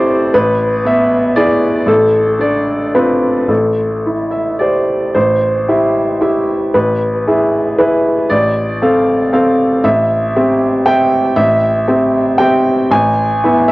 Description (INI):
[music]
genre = classical, contemporary piece for solo upright piano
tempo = 116 BPM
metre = 3/4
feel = rubato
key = A minor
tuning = A4 = 439 Hz
[part]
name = bright upright piano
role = solo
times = 0.0-13.7 s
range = A1 to G#5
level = -11 LUFS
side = equal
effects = cassette tape
[sound]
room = moderate studio reverb, RT60 0.6 s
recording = home recording on cassette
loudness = -11 LUFS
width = side -19 dB against mid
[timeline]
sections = 0.0-5.1 A section; 5.1-13.7 B section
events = none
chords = 0.3 E/A; 1.9 Dm7/A; 3.5 Am7; 6.7 E/A; 8.3 Dm7/A; 9.8 Am7; 12.9 E/A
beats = | 0.34 0.85 1.37 | 1.88 2.40 2.94 | 3.49 4.05 4.60 | 5.14 5.68 6.21 | 6.74 7.27 7.79 | 8.30 8.82 9.33 | 9.85 10.36 10.87 | 11.38 11.89 12.40 | 12.92 13.44